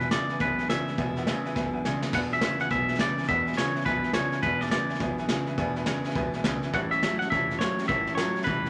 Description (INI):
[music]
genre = rockabilly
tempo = 208 BPM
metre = 4/4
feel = swing 62% on 8ths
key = E mixolydian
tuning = A4 = 440 Hz
[part]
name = twangy electric guitar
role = melody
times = 0.0-8.7 s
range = B4 to F#5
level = -30 LUFS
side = equal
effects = none
[part]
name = bright upright piano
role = accompaniment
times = 0.0-8.7 s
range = B4 to A5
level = -38 LUFS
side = equal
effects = none
[part]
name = picked steel-string acoustic guitar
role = accompaniment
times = 0.0-8.7 s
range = E2 to E4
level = -41 LUFS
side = equal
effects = none
[part]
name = clean electric guitar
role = riff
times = 0.0-8.7 s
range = E2 to F#3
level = -34 LUFS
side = equal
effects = none
[part]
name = upright bass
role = bass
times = 0.0-8.7 s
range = E1 to E2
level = -42 LUFS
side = equal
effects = none
[part]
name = soft brush drum kit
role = drums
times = 0.0-8.7 s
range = crash cymbal, hi-hat, kick drum, snare drum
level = -33 LUFS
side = equal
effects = none
[sound]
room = wet club reverb, RT60 0.5 s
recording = none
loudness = -27 LUFS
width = mono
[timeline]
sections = 0.0-2.1 A section; 2.1-8.7 A section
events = drum fill 1.6-2.1; upright piano fill 1.6-2.1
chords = 0.0 E7; 6.7 A7